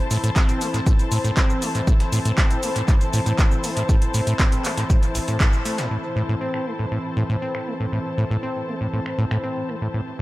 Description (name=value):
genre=acid house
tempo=119 BPM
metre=4/4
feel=straight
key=A minor pentatonic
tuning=A4 = 440 Hz
part: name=warm analog pad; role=sustained chords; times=0.0-10.2 s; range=E3 to C5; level=-30 LUFS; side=equal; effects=chorus, sidechain pumping
part: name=muted studio string section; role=texture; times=0.0-10.2 s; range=E4 to A5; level=-30 LUFS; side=left 2 dB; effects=sidechain pumping
part: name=acid bass, saw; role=riff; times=0.1-10.2 s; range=A1 to C4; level=-24 LUFS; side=equal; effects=analog delay
part: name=booming analog drum machine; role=drums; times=0.1-9.4 s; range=finger snaps, handclaps, hi-hat, shaker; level=-28 LUFS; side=right 1 dB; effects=low-pass filter on hats, low-pass filter on perc, low-pass filter on snare, low-pass filter on room, analog delay
part: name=breakbeat sampler-style drum kit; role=drums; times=0.1-5.9 s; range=hi-hat, snare drum, tambourine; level=-37 LUFS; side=left 1 dB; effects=none
part: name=electronic kick drum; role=drums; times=0.4-5.5 s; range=none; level=-18 LUFS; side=equal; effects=none
room=light reverb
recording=echo-heavy mix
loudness=-19 LUFS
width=side -18 dB against mid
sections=0.0-5.9 A section; 5.9-10.2 B section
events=band accent 5.4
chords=0.0 Am